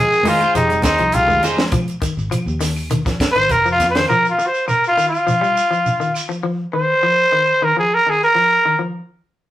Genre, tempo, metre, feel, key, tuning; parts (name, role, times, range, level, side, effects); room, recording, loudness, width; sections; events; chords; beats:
afrobeat; 102 BPM; 4/4; straight; A4 = 440 Hz
growling trumpet; melody; 0.0-8.8 s; Eb4 to C5; -14 LUFS; equal
barky tine electric piano; accompaniment; 0.0-1.4 s; Ab3 to Bb4; -26 LUFS; right 1 dB; overdrive, phaser
semi-hollow electric guitar; arpeggios; 0.0-9.0 s; Eb3 to G3; -24 LUFS; left 3 dB
fingered electric bass; bass; 0.0-4.0 s; F1 to F2; -24 LUFS; equal
shekere; percussion; 0.1-6.4 s; -25 LUFS; right 2 dB
congas; percussion; 0.2-1.7 s; -26 LUFS; right 1 dB
electric guitar at the edge of break-up; stabs; 0.3-1.6 s; Eb4 to C5; -23 LUFS; right 2 dB
tight funk drum kit; drums; 0.3-4.1 s; hi-hat, kick drum, snare drum; -22 LUFS; right 1 dB
claves; percussion; 0.4-6.3 s; -37 LUFS; left 2 dB
wet studio reverb, RT60 0.6 s; rough rehearsal-room recording; -14 LUFS; side -13 dB against mid
0.0-8.8 A section
trumpet solo 0.0-8.8
0.0 Fm7; 4.1 Bbsus24; 8.8 N.C.
0.55 1.14 | 1.73 2.31 2.90 3.49 | 4.08 4.67 5.26 5.85 | 6.44 7.03 7.62 8.21 | 8.80